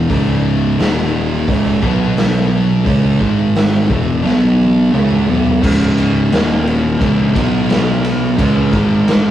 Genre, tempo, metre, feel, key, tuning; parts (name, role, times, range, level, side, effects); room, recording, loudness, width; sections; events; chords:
stoner and doom metal; 87 BPM; 4/4; straight; C# minor; A4 = 440 Hz
thick fuzz guitar; riff; 0.0-9.3 s; C#2 to C#4; -15 LUFS; left 3 dB; distortion
thick fuzz guitar; riff; 0.0-9.3 s; C#2 to C#4; -17 LUFS; right 5 dB; distortion
fuzz fingered electric bass; bass; 0.0-9.3 s; C#1 to C#2; -24 LUFS; equal; overdrive
raw garage drum kit; drums; 0.1-9.2 s; crash cymbal, hi-hat, kick drum, ride cymbal, snare drum, toms; -18 LUFS; equal
moderate studio reverb, RT60 0.6 s; rough rehearsal-room recording, warm saturation; -12 LUFS; side -12 dB against mid
0.0-5.6 A section; 5.6-9.3 B section
drum fill 4.2-5.6
0.1 C#5; 0.8 D#5; 1.5 C#5; 1.8 B5; 2.9 C#5; 3.2 G#5; 3.9 E5; 4.2 B5; 4.9 C#5; 6.3 D#5; 7.0 C#5; 7.3 B5; 8.4 C#5; 8.7 G#5